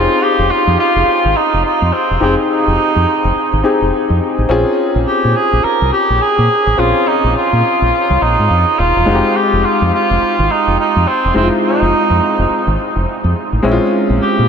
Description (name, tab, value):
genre	R&B, new jack swing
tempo	105 BPM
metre	4/4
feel	swing 61% on 16ths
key	F minor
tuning	A4 = 439 Hz
part	mellow cor anglais	melody	0.0-14.5 s	C4 to Bb4	-14 LUFS	right 1 dB	none
part	warm concert grand piano	accompaniment	0.0-14.5 s	Ab3 to Ab4	-17 LUFS	left 2 dB	none
part	deep dub fingered electric bass	bass	0.0-14.5 s	Eb1 to Bb2	-16 LUFS	equal	none
room	wet huge ambient reverb, RT60 8.5 s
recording	dreamy mix soaked in reverb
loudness	-11 LUFS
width	side -7 dB against mid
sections	0.0-14.5 A section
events	none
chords	0.0 Fm9; 4.5 Bbm7; 9.1 Fm9; 13.6 Bbm7